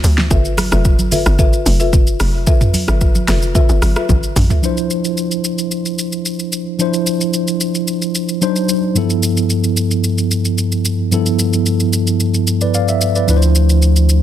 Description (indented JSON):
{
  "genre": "amapiano",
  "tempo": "111 BPM",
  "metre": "4/4",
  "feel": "straight",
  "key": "D dorian",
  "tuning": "A4 = 440 Hz",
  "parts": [
    { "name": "tight log drum bass", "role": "bass", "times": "0.0-4.5 s", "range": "F1 to D2", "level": "-15 LUFS", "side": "equal", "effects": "none" },
    { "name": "deep house drum kit", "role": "drums", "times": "0.0-14.2 s", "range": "hi-hat, kick drum, rim click, shaker, snare drum, toms", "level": "-17 LUFS", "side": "equal", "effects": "soft clipping on snare" },
    { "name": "congas", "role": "percussion", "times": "0.0-4.5 s", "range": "none", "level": "-24 LUFS", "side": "right 3 dB", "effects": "none" },
    { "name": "folk marimba with soft mallets", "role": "stabs", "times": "0.3-4.1 s", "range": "F4 to E5", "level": "-21 LUFS", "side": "left 5 dB", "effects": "ping-pong delay" },
    { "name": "mellow tine electric piano", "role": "accompaniment", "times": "4.6-14.2 s", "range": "G2 to F5", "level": "-15 LUFS", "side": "equal", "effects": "medium stereo tremolo" },
    { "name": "warm sub bass", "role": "bass", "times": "13.3-14.2 s", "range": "D2", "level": "-10 LUFS", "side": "equal", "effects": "none" }
  ],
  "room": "light reverb, digital ambience",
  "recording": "dense, heavily limited modern master",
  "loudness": "-13 LUFS",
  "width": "side -11 dB against mid",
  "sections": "0.0-4.6 A section; 4.6-14.2 B section",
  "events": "drop 0.0-4.6; drum fill 4.1-4.6",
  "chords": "0.3 G13; 4.6 Dm9; 8.4 D7b9; 9.0 G13; 13.3 Dm9"
}